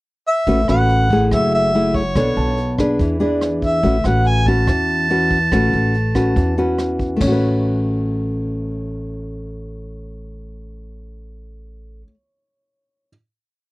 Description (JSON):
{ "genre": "bossa nova", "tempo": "143 BPM", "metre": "4/4", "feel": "straight", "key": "A major", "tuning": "A4 = 440 Hz", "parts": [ { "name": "mellow harmonica", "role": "melody", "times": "0.3-6.8 s", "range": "C#5 to A5", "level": "-19 LUFS", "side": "right 1 dB", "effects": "none" }, { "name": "nylon-string guitar", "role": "accompaniment", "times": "0.5-12.1 s", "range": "E3 to C#5", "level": "-19 LUFS", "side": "left 1 dB", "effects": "none" }, { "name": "upright bass", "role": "bass", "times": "0.5-12.0 s", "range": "F#1 to E2", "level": "-21 LUFS", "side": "equal", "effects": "none" }, { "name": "vintage brush drum kit", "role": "drums", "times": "0.5-7.3 s", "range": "crash cymbal, hi-hat, kick drum, rim click, toms", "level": "-25 LUFS", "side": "equal", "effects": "none" }, { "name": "clear baby grand piano", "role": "accompaniment", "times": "0.7-3.9, 7.2-13.1 s", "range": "C#5 to B5", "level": "-30 LUFS", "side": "right 3 dB", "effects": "none" } ], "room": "little or no reverb", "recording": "dry, close 1970s-style studio recording", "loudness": "-15 LUFS", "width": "side -20 dB against mid", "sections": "0.0-0.5 pickup bar; 0.5-7.2 A section; 7.2-10.6 final chord", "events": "none", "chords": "0.5 A69; 1.3 F#m9; 2.2 Bm9; 3.0 E7; 3.8 A69" }